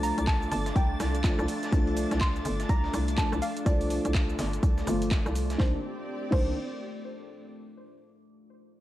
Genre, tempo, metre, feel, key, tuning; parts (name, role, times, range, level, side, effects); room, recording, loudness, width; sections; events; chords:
deep house; 124 BPM; 4/4; swing 61% on 16ths; A4 = 438 Hz
soft round pluck; melody; 0.0-6.5 s; C5 to C6; -36 LUFS; right 1 dB; chorus, vintage 12-bit sampler grit, tape echo
deep dark ambient pad; sustained chords; 0.0-5.8 s; A3 to D6; -39 LUFS; left 1 dB; chorus, built-in reverb, sidechain pumping
felt-muted upright piano; stabs; 0.0-6.5 s; Eb3 to F4; -33 LUFS; left 1 dB; sidechain pumping, tape echo
hollow knocking FM bass; bass; 0.0-6.5 s; G1 to C2; -31 LUFS; equal; tube saturation, sidechain pumping
breakbeat sampler-style drum kit; drums; 0.0-5.6 s; hi-hat, snare drum; -43 LUFS; equal; sidechain pumping on hats, high-pass filter on hats, studio ambience, high-pass filter on snare, high-pass filter on room
house drum kit; drums; 0.0-6.4 s; cabasa, crash cymbal, handclaps, hi-hat, rim click, snare drum; -39 LUFS; right 1 dB; studio ambience
string machine, violins; texture; 0.0-5.6 s; A6; -43 LUFS; equal; ensemble chorus, sidechain pumping
warm studio string section; texture; 0.0-7.5 s; A3 to D5; -39 LUFS; right 2 dB; sidechain pumping
electronic kick drum; drums; 0.3-6.4 s; -26 LUFS; equal; studio ambience
light reverb, digital ambience; -25 LUFS; side -15 dB against mid
0.0-5.6 A section; 5.6-7.5 B section
drop 0.0-5.6
0.0 Dm; 5.6 Cm9